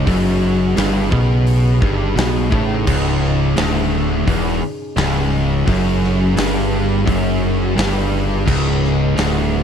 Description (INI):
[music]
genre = stoner and doom metal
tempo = 86 BPM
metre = 4/4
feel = straight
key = unclear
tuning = A4 = 436 Hz
[part]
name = deep rumbling drone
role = sustained chords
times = 0.0-9.6 s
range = C#3 to G#4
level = -27 LUFS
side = right 2 dB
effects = built-in reverb
[part]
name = fuzz guitar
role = riff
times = 0.0-9.6 s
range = C#2 to B2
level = -19 LUFS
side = equal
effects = distortion
[part]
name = tight distorted guitar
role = riff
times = 0.0-9.6 s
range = C#2 to B2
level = -20 LUFS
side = left 1 dB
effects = distortion
[part]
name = growling picked electric bass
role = bass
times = 0.0-9.6 s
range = C#1 to B1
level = -21 LUFS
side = equal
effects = overdrive
[part]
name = big rock drum kit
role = drums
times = 0.1-9.3 s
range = crash cymbal, hi-hat, kick drum, snare drum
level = -22 LUFS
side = equal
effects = none
[sound]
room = light reverb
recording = dark, warm production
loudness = -14 LUFS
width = side -8 dB against mid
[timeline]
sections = 0.0-9.6 A section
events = none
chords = 0.0 C#5